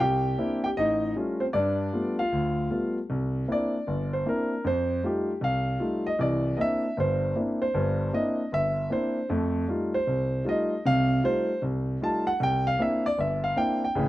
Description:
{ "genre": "solo jazz", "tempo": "155 BPM", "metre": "4/4", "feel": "swing 65% on 8ths", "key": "C mixolydian", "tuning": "A4 = 440 Hz", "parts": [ { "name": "warm concert grand piano", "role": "solo", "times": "0.0-14.1 s", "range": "G1 to A5", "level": "-24 LUFS", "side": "equal", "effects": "none" } ], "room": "little or no reverb", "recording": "recorded outdoors, with no room sound", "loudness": "-24 LUFS", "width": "side -16 dB against mid", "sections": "0.0-3.1 A section; 3.1-14.1 B section", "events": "grand piano solo 3.1-14.1", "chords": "0.0 C9; 0.8 A7alt; 1.5 G9; 3.1 C9; 4.7 F9; 6.2 C9; 9.3 F9; 12.4 C9", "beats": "0.38 0.77 1.16 | 1.54 1.93 2.32 2.71 | 3.10 3.49 3.87 4.26 | 4.65 5.04 5.43 5.81 | 6.20 6.59 6.98 7.37 | 7.75 8.14 8.53 8.92 | 9.30 9.69 10.08 10.47 | 10.85 11.24 11.63 12.02 | 12.40 12.79 13.18 13.56 | 13.95" }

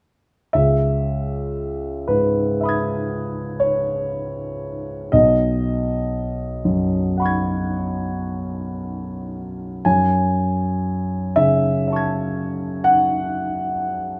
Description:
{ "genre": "classical, impressionist solo piano", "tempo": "35-41 BPM (dotted quarters)", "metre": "9/8", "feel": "rubato", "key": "C# minor", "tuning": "A4 = 440 Hz", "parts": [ { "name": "warm grand piano", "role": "solo", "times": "0.5-14.2 s", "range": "B1 to G#6", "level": "-21 LUFS", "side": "equal", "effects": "none" } ], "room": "moderate stone room reverb, RT60 1.2 s", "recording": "none", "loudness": "-21 LUFS", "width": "mono", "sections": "0.5-14.2 A section", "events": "none", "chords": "0.5 C#m9; 5.1 B69; 9.8 F#m9", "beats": "| 0.54 2.10 3.61 | 5.14 6.66 8.20 | 9.85 11.38 12.86" }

